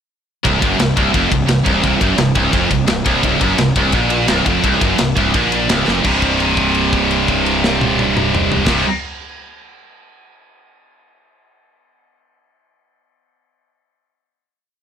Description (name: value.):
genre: heavy metal.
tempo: 171 BPM.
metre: 4/4.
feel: straight.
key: unclear.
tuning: A4 = 445 Hz.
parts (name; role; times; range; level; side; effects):
heavy high-gain guitar; riff; 0.4-8.8 s; B#1 to C3; -20 LUFS; left 12 dB; distortion.
heavy high-gain guitar; riff; 0.4-8.8 s; B#1 to Eb4; -21 LUFS; left 2 dB; distortion.
high-gain distorted guitar; riff; 0.4-8.8 s; B#1 to C3; -17 LUFS; right 8 dB; distortion.
tight metal drum kit; drums; 0.4-8.7 s; crash cymbal, kick drum, ride cymbal, snare drum, toms; -19 LUFS; left 1 dB; none.
fuzz fingered electric bass; bass; 0.5-8.8 s; B#0 to A#1; -23 LUFS; left 1 dB; overdrive.
room: studio reverb.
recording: blown-out, overdriven recording, overdrive.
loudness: -13 LUFS.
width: side -8 dB against mid.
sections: 0.4-6.0 riff; 6.0-8.9 final chord.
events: drum fill 5.9; held note 6.0-8.7.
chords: 0.4 F#maj7#11/B#; 6.0 Cm.